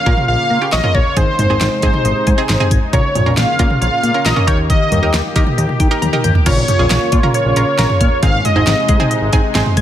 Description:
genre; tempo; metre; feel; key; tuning
synth-pop; 136 BPM; 4/4; straight; Bb dorian; A4 = 444 Hz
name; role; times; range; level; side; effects
wide unison lead; melody; 0.0-9.1 s; C5 to F5; -18 LUFS; equal; ping-pong delay
sweeping resonant pad; sustained chords; 0.0-9.8 s; C3 to G4; -22 LUFS; equal; chorus
analog pluck; accompaniment; 0.1-9.8 s; C4 to Bb4; -22 LUFS; right 3 dB; chorus
analog pluck; arpeggios; 0.1-9.8 s; Db3 to Bb6; -25 LUFS; left 4 dB; chorus, ping-pong delay
fat analog bass; bass; 0.1-9.8 s; Ab1 to Eb3; -17 LUFS; equal; none
pop drum kit; drums; 0.1-9.8 s; crash cymbal, hi-hat, kick drum, snare drum, toms; -16 LUFS; equal; none
room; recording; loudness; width
light reverb; none; -12 LUFS; side -11 dB against mid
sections
0.0-6.5 A section; 6.5-9.8 B section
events
drum fill 6.0-6.5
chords
0.0 Bbm; 1.2 Ab; 2.9 Bbm; 4.5 Eb; 6.5 Bbm; 8.2 Ab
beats
0.28 0.73 | 1.17 1.61 2.05 2.49 | 2.93 3.37 3.81 4.26 | 4.70 5.14 5.58 6.02 | 6.46 6.90 7.34 7.79 | 8.23 8.67 9.11 9.55

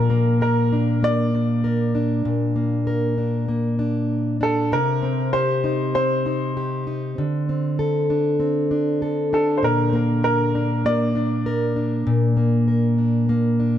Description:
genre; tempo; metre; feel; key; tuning
pop; 98 BPM; 4/4; straight; Bb major; A4 = 441 Hz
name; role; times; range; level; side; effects
bright upright piano; melody; 0.0-11.7 s; A4 to D5; -24 LUFS; equal; digital delay
fingerpicked plugged-in steel-string acoustic guitar; accompaniment; 0.0-13.8 s; Bb2 to Bb4; -19 LUFS; left 1 dB; none
room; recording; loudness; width
light reverb; dark, warm production; -18 LUFS; side -10 dB against mid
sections
0.0-13.8 A section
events
none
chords
0.0 Bb; 4.7 Cm; 7.2 D5; 9.6 Bb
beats
0.42 1.03 1.65 | 2.26 2.87 3.49 4.10 | 4.71 5.33 5.94 6.56 | 7.17 7.78 8.40 9.01 | 9.62 10.24 10.85 11.46 | 12.08 12.69 13.30

